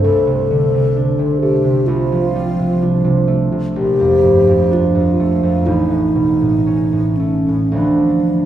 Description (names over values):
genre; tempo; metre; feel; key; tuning
classical, impressionist duo for alto flute and harp; 52-65 BPM; 4/4; rubato; D minor; A4 = 440 Hz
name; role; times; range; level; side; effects
mellow hollow wooden-headed alto flute; melody; 0.0-8.5 s; C#4 to A4; -16 LUFS; left 1 dB; none
concert harp; accompaniment; 0.0-8.5 s; A1 to D4; -15 LUFS; right 2 dB; none
room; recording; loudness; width
wet recital hall reverb, RT60 1.8 s; heard from further back in the room; -13 LUFS; side -11 dB against mid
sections
0.0-8.5 A section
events
none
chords
0.0 Dm7/C; 3.8 Bbmaj7; 5.7 Aaug; 7.8 Dm6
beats
| 0.02 0.96 1.88 2.82 | 3.77 4.73 5.68 6.66 | 7.75